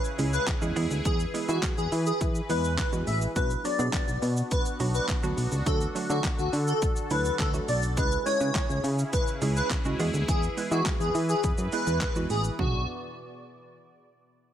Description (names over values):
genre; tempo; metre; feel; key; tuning
dance-pop; 104 BPM; 4/4; straight; B dorian; A4 = 438 Hz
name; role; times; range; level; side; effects
sweeping resonant pad; sustained chords; 0.0-12.9 s; B2 to D5; -36 LUFS; left 1 dB; chorus, sidechain pumping
pop drum kit; drums; 0.0-12.7 s; handclaps, hi-hat, kick drum, shaker, snare drum, toms; -30 LUFS; equal; none
hollow square pluck; accompaniment; 0.2-12.9 s; F#3 to B4; -34 LUFS; right 5 dB; chorus, sidechain pumping
solid FM bass; bass; 0.2-12.9 s; A1 to E3; -28 LUFS; equal; sidechain pumping
airy dreamy lead; melody; 0.3-12.9 s; F#4 to E5; -30 LUFS; left 1 dB; chorus, sidechain pumping, tape echo
room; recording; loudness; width
digital ambience; none; -24 LUFS; side -10 dB against mid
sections
0.0-12.6 A section; 12.6-14.5 B section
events
drop 0.0-12.6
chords
0.0 C#m; 0.8 E; 3.4 Bm; 5.7 D; 8.0 C#m; 10.0 E; 12.6 Bm